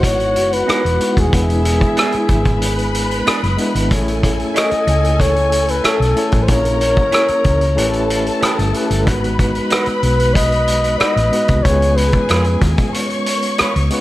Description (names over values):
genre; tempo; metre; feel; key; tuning
lush 1970s-style soul; 93 BPM; 4/4; straight; E major; A4 = 442 Hz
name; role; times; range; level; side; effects
breathy flugelhorn; melody; 0.0-12.6 s; G#4 to D#5; -18 LUFS; left 1 dB; none
warm studio string section; second line; 0.0-14.0 s; E4 to C#6; -24 LUFS; equal; none
overdriven tine electric piano; accompaniment; 0.0-14.0 s; G#3 to C#5; -21 LUFS; left 1 dB; medium tremolo
hollow-body short-scale fingered electric bass; bass; 0.0-13.9 s; D#1 to E#2; -18 LUFS; equal; none
vintage drum kit; drums; 0.0-14.0 s; hi-hat, kick drum, rim click; -18 LUFS; equal; none
semi-hollow electric guitar; riff; 0.7-13.7 s; B3 to C#5; -26 LUFS; right 6 dB; none
room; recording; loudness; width
little or no reverb; none; -13 LUFS; side -16 dB against mid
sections
0.0-14.0 A section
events
none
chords
0.0 Emaj7; 1.3 E7; 3.9 Amaj7; 6.5 A#m7b5; 7.8 A9; 9.1 G#m7; 11.7 C#7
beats
0.04 0.68 | 1.33 1.97 2.62 3.26 | 3.91 4.55 5.20 5.84 | 6.49 7.13 7.78 8.42 | 9.07 9.71 10.36 11.01 | 11.65 12.30 12.94 13.59